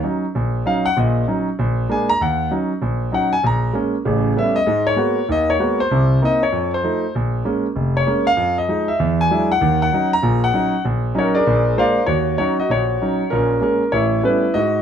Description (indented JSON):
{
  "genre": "jazz",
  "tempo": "194 BPM",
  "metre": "4/4",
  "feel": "swing 62% on 8ths",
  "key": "Eb minor",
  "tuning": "A4 = 444 Hz",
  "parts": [
    { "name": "clear concert grand piano", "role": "solo", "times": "0.0-14.8 s", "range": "F1 to Bb5", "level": "-16 LUFS", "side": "equal", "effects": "none" }
  ],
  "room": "wet small room reverb, RT60 0.5 s",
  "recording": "none",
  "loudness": "-16 LUFS",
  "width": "side -8 dB against mid",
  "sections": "0.0-2.2 A section; 2.2-12.1 A section; 12.1-14.8 B section",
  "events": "grand piano solo 0.0-12.1",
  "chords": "0.0 Ebm7; 1.6 Bb7; 2.2 Ebm7; 3.4 Bbm7; 4.0 A9; 4.7 Abm9; 5.9 Cm7; 6.5 F7; 7.1 Bbm7; 8.4 Fm7; 9.0 E9; 9.6 Ebm7; 11.5 Bb7; 12.1 Ebm7; 13.3 Bbm7; 13.9 A9"
}